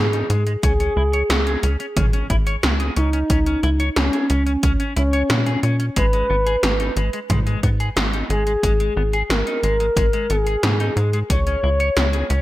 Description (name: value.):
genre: synthwave.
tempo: 90 BPM.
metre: 4/4.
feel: straight.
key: G# minor.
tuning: A4 = 442 Hz.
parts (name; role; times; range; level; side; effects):
expressive synth lead; melody; 0.0-12.4 s; C#4 to C#5; -22 LUFS; equal; chorus, cassette tape, digital delay.
tight sequencer bass; bass; 0.0-12.4 s; G#1 to A#2; -20 LUFS; equal; none.
clean electric guitar; riff; 0.1-12.4 s; G#3 to C#5; -28 LUFS; left 2 dB; wide subtle chorus, low-pass filter, digital delay.
80s electronic pad drums; drums; 0.1-12.4 s; hi-hat, snare drum, toms; -23 LUFS; equal; gated reverb on snare and toms, gated reverb.
electronic kick drum; drums; 0.6-11.4 s; none; -21 LUFS; equal; none.
room: light reverb.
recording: none.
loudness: -17 LUFS.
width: side -16 dB against mid.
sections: 0.0-12.4 A section.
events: none.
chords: 0.0 G#5; 0.6 C#5; 6.0 G#madd9; 11.3 N.C..